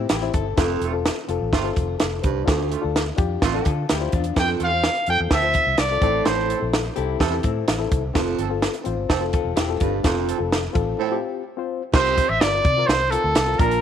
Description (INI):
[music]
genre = uptempo 1960s-style soul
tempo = 127 BPM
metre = 4/4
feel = straight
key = F major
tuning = A4 = 440 Hz
[part]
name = reed electric piano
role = accompaniment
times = 0.0-13.8 s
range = C4 to A5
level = -27 LUFS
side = left 11 dB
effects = none
[part]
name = vintage hollow-body jazz guitar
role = riff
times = 0.0-0.8, 3.7-10.3 s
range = C4 to A4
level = -31 LUFS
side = left 13 dB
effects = none
[part]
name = vintage muted fingered electric bass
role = bass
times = 0.0-13.8 s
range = E1 to D3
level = -27 LUFS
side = equal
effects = none
[part]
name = compact cocktail drum kit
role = drums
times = 0.1-13.8 s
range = crash cymbal, hi-hat, kick drum, snare drum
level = -22 LUFS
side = right 1 dB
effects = none
[part]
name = warm baritone saxophone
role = riff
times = 0.6-13.8 s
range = D2 to C3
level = -28 LUFS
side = right 12 dB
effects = none
[part]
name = warm horn section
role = second line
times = 0.8-11.1 s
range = C3 to A4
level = -31 LUFS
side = right 10 dB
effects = none
[part]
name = clear trumpet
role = melody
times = 4.4-6.7, 11.9-13.8 s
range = A4 to G5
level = -20 LUFS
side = equal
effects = slapback echo
[sound]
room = light reverb, small room ambience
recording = 1960s-style stereo with parts hard left and right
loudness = -19 LUFS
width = side -9 dB against mid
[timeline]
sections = 0.0-11.9 A section; 11.9-13.8 B section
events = break 11.0-11.9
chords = 0.0 Am; 0.6 F; 2.5 Dm; 4.4 F; 6.0 Am; 8.2 F; 11.9 C7sus4